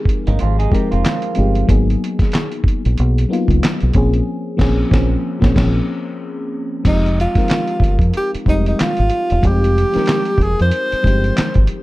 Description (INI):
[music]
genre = R&B, neo-soul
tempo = 93 BPM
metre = 4/4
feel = swing 57% on 16ths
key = F minor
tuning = A4 = 440 Hz
[part]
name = mellow FM electric piano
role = accompaniment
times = 0.0-11.8 s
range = F3 to Bb4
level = -21 LUFS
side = left 2 dB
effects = chorus
[part]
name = deep dub fingered electric bass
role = bass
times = 0.1-11.7 s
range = E1 to F2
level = -16 LUFS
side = equal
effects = none
[part]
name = dusty soul sampler-style drum kit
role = drums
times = 0.1-11.8 s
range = crash cymbal, handclaps, hi-hat, kick drum, snare drum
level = -18 LUFS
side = equal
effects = none
[part]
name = electric guitar through a small old amp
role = second line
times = 0.3-1.7 s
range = Bb3 to Ab4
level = -24 LUFS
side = right 7 dB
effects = none
[part]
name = breathy tenor saxophone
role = melody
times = 6.9-11.7 s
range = Eb4 to C5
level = -19 LUFS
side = equal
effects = none
[sound]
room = digital ambience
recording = dark, warm production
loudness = -14 LUFS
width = side -18 dB against mid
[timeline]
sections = 0.0-6.8 A section; 6.8-11.8 B section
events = band accent 4.3-6.8; break 5.6-6.8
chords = 0.0 Fm9; 1.7 Abm9; 3.9 Bbm9; 6.8 Fm9